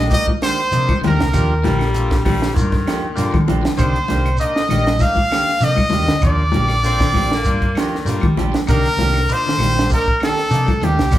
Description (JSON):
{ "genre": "afrobeat", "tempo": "98 BPM", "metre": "4/4", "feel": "straight", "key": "C dorian", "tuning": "A4 = 437 Hz", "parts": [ { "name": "bright trumpet", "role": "melody", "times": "0.0-11.2 s", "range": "G4 to F5", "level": "-20 LUFS", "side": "equal", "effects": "none" }, { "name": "clear trumpet", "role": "second line", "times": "0.0-11.2 s", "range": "G4 to F5", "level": "-26 LUFS", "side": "right 2 dB", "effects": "none" }, { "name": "electric guitar at the edge of break-up", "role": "arpeggios", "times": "0.0-11.2 s", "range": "D3 to G3", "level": "-28 LUFS", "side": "left 3 dB", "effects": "none" }, { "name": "clean electric guitar", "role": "stabs", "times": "0.0-11.2 s", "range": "Eb3 to G4", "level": "-26 LUFS", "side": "right 4 dB", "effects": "none" }, { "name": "hollow-body short-scale fingered electric bass", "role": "bass", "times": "0.0-11.2 s", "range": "Bb1 to Eb3", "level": "-20 LUFS", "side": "equal", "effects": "none" }, { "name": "overdriven combo organ", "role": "accompaniment", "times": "0.1-11.2 s", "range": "Bb3 to A4", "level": "-29 LUFS", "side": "left 2 dB", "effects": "none" }, { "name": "compact cocktail drum kit", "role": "drums", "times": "0.1-11.2 s", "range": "hi-hat, kick drum, snare drum", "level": "-20 LUFS", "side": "equal", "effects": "none" }, { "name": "congas", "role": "percussion", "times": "0.1-11.0 s", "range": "none", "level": "-24 LUFS", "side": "left 2 dB", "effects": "none" }, { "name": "shekere", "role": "percussion", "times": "0.1-11.2 s", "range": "none", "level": "-28 LUFS", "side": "right 1 dB", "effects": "none" }, { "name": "claves", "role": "percussion", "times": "0.4-11.2 s", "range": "none", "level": "-37 LUFS", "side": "left 2 dB", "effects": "none" }, { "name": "raspy baritone saxophone", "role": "second line", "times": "1.6-8.5 s", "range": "D3 to C4", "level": "-25 LUFS", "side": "left 3 dB", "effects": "none" } ], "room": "wet large studio reverb, RT60 0.9 s", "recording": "band playing live in one room", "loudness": "-14 LUFS", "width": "side -13 dB against mid", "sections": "0.0-11.2 A section", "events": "none", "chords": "0.0 Cm9; 1.3 Ebmaj9; 3.8 Cm9; 6.2 Ebmaj9; 8.7 Cm9" }